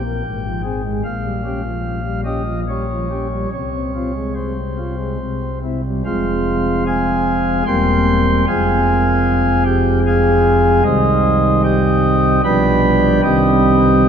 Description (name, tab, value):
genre	classical, chorale-style piece for pipe organ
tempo	75 BPM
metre	3/4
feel	rubato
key	F minor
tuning	A4 = 439 Hz
part	pipe organ, flutes	solo	0.0-14.1 s	E1 to C6	-14 LUFS	equal	none
room	wet cathedral reverb, RT60 5.2 s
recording	none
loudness	-14 LUFS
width	side -8 dB against mid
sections	0.0-6.0 A section; 6.0-14.1 B section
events	none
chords	0.3 Fm/Ab; 1.1 Gm7b5/Bb; 3.5 Fm/C; 5.2 C; 6.0 Fm; 7.7 C7/E; 8.5 Fm; 10.9 Cm; 12.4 G7/B; 13.2 Cm